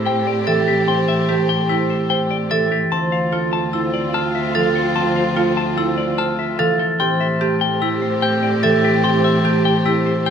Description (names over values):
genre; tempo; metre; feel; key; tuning
classical, minimalist pattern music; 147 BPM; 5/4; straight; A minor; A4 = 441 Hz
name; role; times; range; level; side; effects
clean electric guitar; melody; 0.0-10.3 s; G4 to A5; -23 LUFS; left 10 dB; none
dark French horn; second line; 0.0-10.3 s; F4 to G4; -25 LUFS; right 5 dB; none
concert harp; accompaniment; 0.0-10.3 s; E3 to C4; -23 LUFS; equal; none
warm symphonic violin section; sustained chords; 0.0-10.3 s; C4 to G4; -26 LUFS; left 4 dB; none
rich cello; bass; 0.0-10.3 s; D2 to A2; -24 LUFS; right 2 dB; none
marimba with hard mallets; arpeggios; 0.1-10.3 s; E4 to C5; -24 LUFS; right 7 dB; none
glockenspiel with soft plastic mallets; arpeggios; 0.5-10.3 s; C6 to A6; -24 LUFS; left 1 dB; none
room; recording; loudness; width
moderate scoring stage reverb, RT60 1.5 s; close, detailed microphones; -16 LUFS; side -7 dB against mid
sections
0.0-10.3 A section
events
none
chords
0.0 Am7; 2.9 Dm7; 7.0 Am7